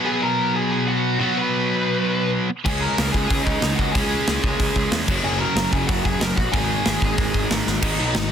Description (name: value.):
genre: punk rock.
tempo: 185 BPM.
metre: 4/4.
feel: straight.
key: G# minor.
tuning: A4 = 439 Hz.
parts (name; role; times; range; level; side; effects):
distorted electric guitar; riff; 0.0-8.3 s; F#2 to C#4; -22 LUFS; equal; distortion.
bluesy overdriven lead guitar; melody; 0.1-8.3 s; D#4 to B5; -25 LUFS; left 1 dB; distortion.
fuzz picked electric bass; bass; 2.7-8.3 s; F#1 to E2; -26 LUFS; equal; overdrive.
big rock drum kit; drums; 2.7-8.2 s; crash cymbal, hi-hat, kick drum, snare drum; -23 LUFS; equal; none.
room: little or no reverb.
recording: dense, heavily limited modern master.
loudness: -18 LUFS.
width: side -8 dB against mid.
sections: 0.0-7.8 A section.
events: drum fill 7.7.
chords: 0.0 B5; 2.7 C#5; 5.1 F#; 6.5 G#5.